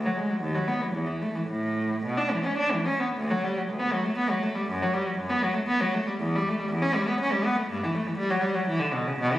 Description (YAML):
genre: classical, baroque-style suite movement for unaccompanied cello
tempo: 104-124 BPM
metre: 3/4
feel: rubato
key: A major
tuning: A4 = 439 Hz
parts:
  - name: rich cello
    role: solo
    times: 0.0-9.4 s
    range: D2 to D4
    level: -24 LUFS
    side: equal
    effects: none
room: wet recital hall reverb, RT60 1.8 s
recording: recorded on a phone in the room, studio reverb, compression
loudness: -24 LUFS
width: side -14 dB against mid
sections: 0.0-3.1 A section; 3.1-9.4 A section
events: none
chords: none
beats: 0.42 0.94 | 1.48 2.03 2.58 | 3.15 3.67 4.17 | 4.67 5.16 5.66 | 6.19 6.70 7.20 | 7.70 8.18 8.67 | 9.19